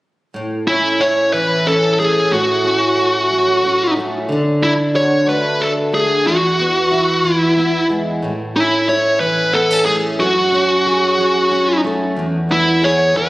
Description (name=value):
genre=pop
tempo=61 BPM (dotted quarters)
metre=6/8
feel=straight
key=A major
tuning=A4 = 440 Hz
part: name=fingerpicked plugged-in steel-string acoustic guitar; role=accompaniment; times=0.3-13.3 s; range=E2 to G#4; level=-19 LUFS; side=equal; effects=double-tracked left and right
part: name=bluesy overdriven lead guitar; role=melody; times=0.7-13.3 s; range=E4 to C#5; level=-14 LUFS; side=equal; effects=distortion, digital delay
room=moderate lush hall reverb, RT60 1.9 s, small room ambience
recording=recorded on a phone in the room, studio reverb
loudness=-13 LUFS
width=side -18 dB against mid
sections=0.3-13.3 A section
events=none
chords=0.3 A; 2.3 F#m/A; 4.3 D; 6.3 E; 8.2 A; 10.2 F#madd9; 12.2 E